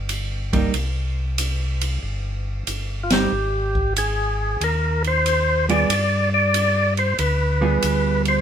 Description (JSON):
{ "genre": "soul jazz organ trio", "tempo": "93 BPM", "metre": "4/4", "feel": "swing 67% on 8ths", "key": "C minor", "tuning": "A4 = 439 Hz", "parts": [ { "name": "mellow tonewheel organ", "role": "bass", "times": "0.0-8.4 s", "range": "G1 to G2", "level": "-23 LUFS", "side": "left 1 dB", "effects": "slow rotary speaker" }, { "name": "open jazz drum kit", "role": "drums", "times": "0.1-8.4 s", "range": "hi-hat, kick drum, ride cymbal, snare drum", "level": "-27 LUFS", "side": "right 1 dB", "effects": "none" }, { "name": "vintage hollow-body jazz guitar", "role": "accompaniment", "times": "0.5-8.4 s", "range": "G3 to Ab4", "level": "-22 LUFS", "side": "right 6 dB", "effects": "none" }, { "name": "percussive tonewheel organ", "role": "melody", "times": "3.0-8.4 s", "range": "F4 to D5", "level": "-20 LUFS", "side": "equal", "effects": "slow rotary speaker" } ], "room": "light reverb", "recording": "minimal, uncompressed stereo recording", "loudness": "-18 LUFS", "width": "side -8 dB against mid", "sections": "0.0-8.4 A section", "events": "band accent 3.0-3.3", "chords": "0.0 C5; 3.3 Abmaj7; 5.9 G7b9" }